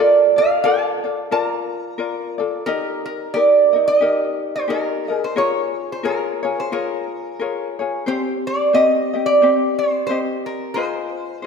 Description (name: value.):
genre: Hawaiian.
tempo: 89 BPM.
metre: 4/4.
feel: swing 59% on 8ths.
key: Eb major.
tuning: A4 = 440 Hz.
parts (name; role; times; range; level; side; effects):
lap resonator guitar; melody; 0.0-11.5 s; Bb4 to Bb5; -18 LUFS; right 2 dB; none.
ukulele; accompaniment; 0.0-11.5 s; C4 to Eb5; -22 LUFS; left 4 dB; none.
room: wet concert hall reverb, RT60 1.8 s.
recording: none.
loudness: -17 LUFS.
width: side -5 dB against mid.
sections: 0.0-2.7 A section; 2.7-11.5 B section.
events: none.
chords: 0.0 Bbmaj7; 2.7 Eb; 5.4 Bbm7; 8.1 Cm; 10.8 Fm7.